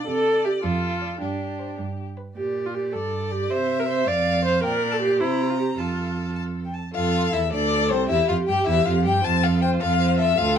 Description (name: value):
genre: quick classical-period movement for string quartet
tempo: 105 BPM (dotted quarters)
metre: 6/8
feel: straight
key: F major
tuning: A4 = 440 Hz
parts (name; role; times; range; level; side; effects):
- rich violin; melody; 0.0-10.6 s; G4 to A5; -26 LUFS; left 7 dB; none
- warm violin; second line; 0.0-10.6 s; C4 to Bb5; -32 LUFS; left 3 dB; none
- rich viola; accompaniment; 0.0-10.6 s; D4 to D5; -25 LUFS; right 2 dB; none
- clear cello; bass; 0.1-10.6 s; C2 to C3; -25 LUFS; right 4 dB; none
room: moderate studio reverb, RT60 0.9 s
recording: dark, warm production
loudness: -20 LUFS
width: side -8 dB against mid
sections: 0.0-6.9 A section; 6.9-10.6 B section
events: none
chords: 0.1 C; 0.6 Dm/F; 1.2 Gsus4; 1.8 G; 2.4 Gm/Bb; 3.5 C; 4.1 Dm7/F; 4.6 Gm/Bb; 5.2 C7; 5.8 F; 8.1 Em; 9.2 F